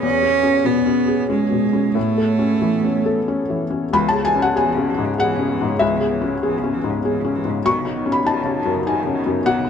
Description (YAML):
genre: neoclassical piano and strings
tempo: 90-101 BPM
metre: 3/4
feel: rubato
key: C# minor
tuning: A4 = 440 Hz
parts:
  - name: rich cello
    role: second line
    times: 0.0-9.7 s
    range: C#3 to C#4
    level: -22 LUFS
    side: right 6 dB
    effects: none
  - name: felt-muted upright piano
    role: accompaniment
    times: 0.0-9.7 s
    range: B1 to C#6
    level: -19 LUFS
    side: left 3 dB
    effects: none
  - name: hollow soft pad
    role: sustained chords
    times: 0.0-9.7 s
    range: B3 to C#5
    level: -26 LUFS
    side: equal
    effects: chorus
room: light reverb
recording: nothing above 10.8 kHz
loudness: -17 LUFS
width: side -7 dB against mid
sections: 0.0-3.9 A section; 3.9-9.7 B section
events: none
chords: 0.0 C#m7/E; 2.0 Aadd9; 3.9 C#m7; 7.7 Badd9